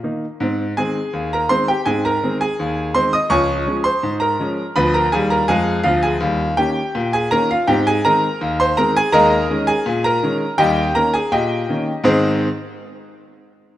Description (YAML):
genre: ragtime piano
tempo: 82 BPM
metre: 2/4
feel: straight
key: Ab major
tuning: A4 = 440 Hz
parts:
  - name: clear grand piano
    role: solo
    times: 0.0-12.5 s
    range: Db2 to Eb6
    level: -16 LUFS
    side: equal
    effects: none
room: moderate lush hall reverb, RT60 2.6 s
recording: rough home demo mix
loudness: -15 LUFS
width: side -13 dB against mid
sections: 0.0-12.1 A section; 12.1-13.5 B section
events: none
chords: 0.4 Ab; 3.3 Db; 4.8 Ddim7; 6.2 Eb7; 7.7 Ab; 9.1 Eb7sus4; 10.6 Eb7; 12.1 Ab